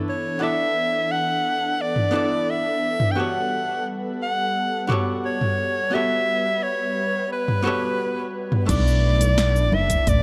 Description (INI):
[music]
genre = sunset chillout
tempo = 87 BPM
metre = 4/4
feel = straight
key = B minor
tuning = A4 = 440 Hz
[part]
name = archtop guitar, miked and amplified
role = accompaniment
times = 0.0-10.2 s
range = A3 to D5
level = -30 LUFS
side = equal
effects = delay
[part]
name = lush unison pad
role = sustained chords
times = 0.0-10.2 s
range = E3 to F#5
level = -33 LUFS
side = equal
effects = chorus
[part]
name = clear soprano saxophone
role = melody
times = 0.1-10.2 s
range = B4 to G5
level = -26 LUFS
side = equal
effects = delay
[part]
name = deep house drum kit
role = drums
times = 2.0-10.2 s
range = cabasa, crash cymbal, hi-hat, snare drum, toms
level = -28 LUFS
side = equal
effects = overdrive
[part]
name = mellow fretless electric bass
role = bass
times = 8.7-10.2 s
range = F#1 to B1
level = -22 LUFS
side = equal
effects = tube saturation, analog chorus
[part]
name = electronic kick drum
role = drums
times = 8.7-10.2 s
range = none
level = -25 LUFS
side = equal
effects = overdrive
[part]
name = congas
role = percussion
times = 8.7-9.9 s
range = none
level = -31 LUFS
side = equal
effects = none
[sound]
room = moderate concert hall reverb, RT60 2.1 s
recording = dark, warm production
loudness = -22 LUFS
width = mono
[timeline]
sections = 0.0-8.7 A section; 8.7-10.2 B section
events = filter sweep on analog synth pad 0.0-8.7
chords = 0.0 Bm11; 3.2 A13; 8.7 Bm11